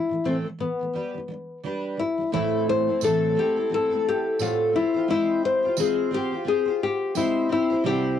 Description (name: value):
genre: acoustic pop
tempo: 87 BPM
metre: 4/4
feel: swing 60% on 16ths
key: unclear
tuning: A4 = 439 Hz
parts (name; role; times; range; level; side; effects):
- nylon-string guitar; melody; 0.0-8.2 s; B3 to C5; -23 LUFS; left 4 dB; none
- picked steel-string acoustic guitar; accompaniment; 0.0-8.2 s; A2 to C5; -27 LUFS; right 3 dB; double-tracked left and right, cassette tape
- tambourine; percussion; 3.0-7.3 s; none; -34 LUFS; right 17 dB; none
room: wet booth ambience, RT60 0.2 s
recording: home recording on cassette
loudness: -22 LUFS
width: side -9 dB against mid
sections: 0.0-2.3 A section; 2.3-8.2 B section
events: none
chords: 0.0 Am; 0.9 G; 2.3 Am; 4.7 Fmadd9/Ab; 7.5 C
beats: 0.25 0.94 1.63 | 2.32 3.01 3.70 4.39 | 5.08 5.77 6.46 7.15 | 7.84